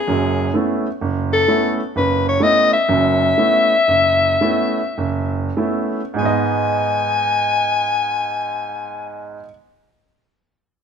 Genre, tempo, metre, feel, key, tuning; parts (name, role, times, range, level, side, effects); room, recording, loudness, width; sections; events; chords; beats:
jazz; 90-129 BPM; 4/4; swing 66% on 8ths; G# phrygian; A4 = 440 Hz
warm soprano saxophone; melody; 0.0-9.4 s; G#4 to G#5; -17 LUFS; left 4 dB
clear baby grand piano; accompaniment; 0.1-9.5 s; F#1 to D#5; -20 LUFS; right 3 dB
moderate large studio reverb, RT60 1.0 s; -15 LUFS; side -7 dB against mid
0.0-6.2 A section; 6.2-10.8 B section
slowing down 1.9-6.2
0.0 B9sus4; 6.2 G#m
| 0.07 0.53 0.99 1.46 | 1.92 2.39 2.87 3.36 | 3.86 4.39 4.95 5.54 | 6.18 6.85 7.51 8.18 | 8.84